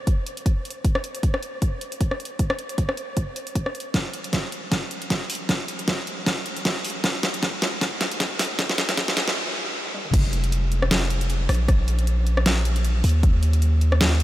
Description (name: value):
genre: future bass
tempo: 155 BPM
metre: 4/4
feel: swing 56% on 16ths, half-time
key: unclear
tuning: A4 = 440 Hz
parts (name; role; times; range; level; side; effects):
- dubstep drum kit; drums; 0.1-14.2 s; crash cymbal, hi-hat, rim click, snare drum, toms; -24 LUFS; equal; overdrive
- electronic kick drum; drums; 0.1-13.3 s; none; -22 LUFS; equal; none
- long sustained 808-style bass; bass; 10.1-14.2 s; F1 to Eb2; -20 LUFS; equal; sidechain pumping
room: moderate huge ambient reverb, RT60 7.7 s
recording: dreamy mix soaked in reverb, high-pass filter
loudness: -21 LUFS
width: side -14 dB against mid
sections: 0.0-10.1 A section; 10.1-14.2 B section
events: build-up 0.0-10.1; filter sweep 0.0-10.1; drum fill 3.9-9.4, 9.9; stop 9.4-10.1; drop 10.1-14.2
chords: none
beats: 0.07 0.46 | 0.85 1.23 1.62 2.01 | 2.39 2.78 3.17 3.56 | 3.94 4.33 4.72 5.10 | 5.49 5.88 6.26 6.65 | 7.04 7.43 7.81 8.20 | 8.59 8.97 9.36 9.75 | 10.14 10.52 10.91 11.30 | 11.69 12.07 12.46 12.85 | 13.23 13.62 14.01